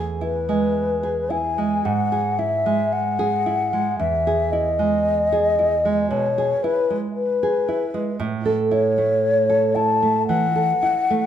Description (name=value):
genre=romantic duo for flute and classical guitar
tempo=56 BPM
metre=4/4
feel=rubato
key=E major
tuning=A4 = 439 Hz
part: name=nylon-string guitar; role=accompaniment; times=0.0-11.3 s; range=E2 to A4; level=-22 LUFS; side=right 4 dB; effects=none
part: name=mellow hollow concert flute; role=melody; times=0.2-11.3 s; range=B4 to A5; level=-20 LUFS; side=left 3 dB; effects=none
room=moderate recital hall reverb, RT60 1.6 s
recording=minimal, uncompressed stereo recording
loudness=-18 LUFS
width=side -10 dB against mid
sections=0.0-11.3 A section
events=none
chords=0.0 E; 1.9 E/G#; 4.0 E; 8.2 A